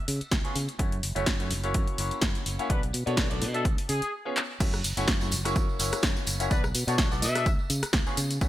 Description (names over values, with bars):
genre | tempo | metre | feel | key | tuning
filtered disco house | 126 BPM | 4/4 | swing 54% on 16ths | unclear | A4 = 440 Hz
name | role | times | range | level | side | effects
modern bright fingered electric bass | bass | 0.1-8.5 s | F#1 to C#3 | -31 LUFS | equal | sidechain pumping, low-pass filter
punchy analog drum machine | drums | 0.1-8.5 s | crash cymbal, handclaps, hi-hat, rim click, snare drum, tambourine | -30 LUFS | equal | overdrive, sidechain pumping on hats, sidechain pumping on perc, sidechain pumping on cymbals
tambourine | percussion | 0.1-8.5 s | none | -42 LUFS | right 1 dB | none
electronic kick drum | drums | 0.3-8.5 s | none | -28 LUFS | equal | overdrive
bright baby grand piano | accompaniment | 0.4-8.5 s | A3 to E5 | -33 LUFS | left 1 dB | phaser, sidechain pumping, low-pass filter
warm trumpet section | melody | 2.7-7.5 s | G#4 to E5 | -34 LUFS | left 2 dB | vintage 12-bit sampler grit, sidechain pumping, low-pass filter
room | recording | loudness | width
light reverb, studio ambience | bright 1980s-style digital production | -25 LUFS | side -14 dB against mid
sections
0.0-4.6 A section; 4.6-8.5 B section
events
filter sweep 0.0-4.6; break 4.1-4.6; drum fill 4.4; drop 4.6-8.5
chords
0.0 N.C.; 0.8 F#m7; 1.5 F#7; 2.7 Bm9; 3.7 C#5; 4.6 F#m7; 5.3 F#7; 6.5 Bm9; 7.5 N.C.